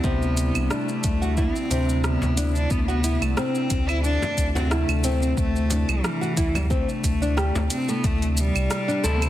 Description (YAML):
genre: organic downtempo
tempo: 90 BPM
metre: 4/4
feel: swing 54% on 16ths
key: unclear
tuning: A4 = 439 Hz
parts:
  - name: rich cello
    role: melody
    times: 0.0-9.3 s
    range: E3 to E4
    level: -27 LUFS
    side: left 1 dB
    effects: vintage 12-bit sampler grit, tape echo
  - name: warm analog pad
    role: sustained chords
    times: 0.0-9.3 s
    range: C3 to E4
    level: -31 LUFS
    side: right 1 dB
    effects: chorus, sidechain pumping
  - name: nylon-string guitar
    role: arpeggios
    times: 0.0-9.2 s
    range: C3 to A4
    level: -28 LUFS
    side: equal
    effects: tape echo
  - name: warm sub bass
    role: bass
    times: 0.0-9.3 s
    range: C2 to D2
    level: -24 LUFS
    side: equal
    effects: tube saturation, sidechain pumping
  - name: deep house drum kit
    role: drums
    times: 0.0-9.3 s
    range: claves, hi-hat, rim click, shaker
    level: -30 LUFS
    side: right 1 dB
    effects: small room ambience, soft clipping on snare
  - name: electronic kick drum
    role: drums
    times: 0.0-8.2 s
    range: none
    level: -26 LUFS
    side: equal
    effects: small room ambience
  - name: frame drum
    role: percussion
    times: 2.2-7.7 s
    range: none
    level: -33 LUFS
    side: left 1 dB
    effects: none
  - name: clean electric guitar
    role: accompaniment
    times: 9.0-9.3 s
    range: C3 to E4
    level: -27 LUFS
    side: left 3 dB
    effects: vintage 12-bit sampler grit, sidechain pumping
room: light reverb, digital ambience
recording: dense, heavily limited modern master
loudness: -20 LUFS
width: side -13 dB against mid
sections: 0.0-8.0 A section; 8.0-9.3 B section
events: none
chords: 0.0 D9sus4; 2.7 C69; 8.0 D9sus4